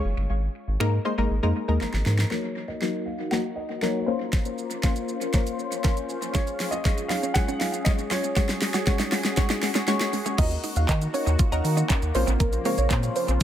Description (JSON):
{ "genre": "dance-pop", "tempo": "119 BPM", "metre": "4/4", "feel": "straight", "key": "unclear", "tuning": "A4 = 440 Hz", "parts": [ { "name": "punchy chord stab", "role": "accompaniment", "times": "0.0-13.4 s", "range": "Gb3 to Db5", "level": "-29 LUFS", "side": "left 2 dB", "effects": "chorus, sidechain pumping, low-pass filter, analog delay" }, { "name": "round analog bass", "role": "bass", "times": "0.0-2.2, 10.4-13.4 s", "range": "Gb1 to Eb3", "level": "-24 LUFS", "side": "equal", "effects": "sidechain pumping" }, { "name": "pop drum kit", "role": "drums", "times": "0.8-13.4 s", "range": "crash cymbal, finger snaps, handclaps, hi-hat, kick drum, shaker, snare drum", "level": "-25 LUFS", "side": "equal", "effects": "analog delay" }, { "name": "warm concert grand piano", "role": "melody", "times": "2.3-10.1 s", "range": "C5 to Gb5", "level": "-33 LUFS", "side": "equal", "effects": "low-pass filter, analog delay" }, { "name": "sweeping resonant pad", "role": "sustained chords", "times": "2.3-13.4 s", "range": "Db3 to C5", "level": "-32 LUFS", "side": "left 2 dB", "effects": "chorus, sidechain pumping, low-pass filter" }, { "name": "direct-recorded clean electric guitar", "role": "riff", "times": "6.3-13.4 s", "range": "Ab3 to Gb4", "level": "-34 LUFS", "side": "right 7 dB", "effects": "analog chorus, low-pass filter, analog delay" }, { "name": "soft round pluck", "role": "melody", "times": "10.4-13.3 s", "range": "Bb4 to F5", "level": "-31 LUFS", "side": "right 2 dB", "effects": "chorus, sidechain pumping, analog delay" } ], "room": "light reverb", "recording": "echo-heavy mix", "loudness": "-22 LUFS", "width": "side -11 dB against mid", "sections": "0.0-2.3 A section; 2.3-10.4 B section; 10.4-13.4 C section", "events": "drum fill 1.8-2.3, 2.3-10.4; build-up 2.3-10.4; filter sweep 2.3-10.4; drop 10.4-13.4", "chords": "0.3 Absus2; 2.3 Ebm; 4.1 Bbmadd9; 6.3 Db; 8.4 Gbsus2; 10.4 Ebm; 12.1 Bbmadd9" }